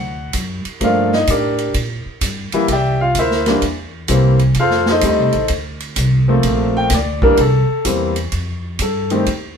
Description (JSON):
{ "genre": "jazz piano trio", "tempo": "128 BPM", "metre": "4/4", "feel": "swing 66% on 8ths", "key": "unclear", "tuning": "A4 = 440 Hz", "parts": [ { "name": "warm concert grand piano", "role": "melody", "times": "0.0-9.3 s", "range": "Eb3 to G5", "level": "-16 LUFS", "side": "left 1 dB", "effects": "none" }, { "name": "upright bass", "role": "bass", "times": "0.0-9.6 s", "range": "A1 to Bb2", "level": "-19 LUFS", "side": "equal", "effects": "none" }, { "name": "swinging big-band drum kit", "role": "drums", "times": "0.3-9.4 s", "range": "hi-hat, kick drum, ride cymbal, snare drum", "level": "-23 LUFS", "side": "right 1 dB", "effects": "none" } ], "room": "moderate studio reverb, RT60 0.8 s", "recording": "band playing live in one room", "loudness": "-14 LUFS", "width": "side -6 dB against mid", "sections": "0.0-8.3 A section; 8.3-9.6 B section", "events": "grand piano solo 0.0-8.3", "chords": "0.0 D; 0.8 Gm7; 2.7 C9; 4.6 F9; 5.5 D5; 6.4 Gm7; 7.4 C7; 8.3 F9" }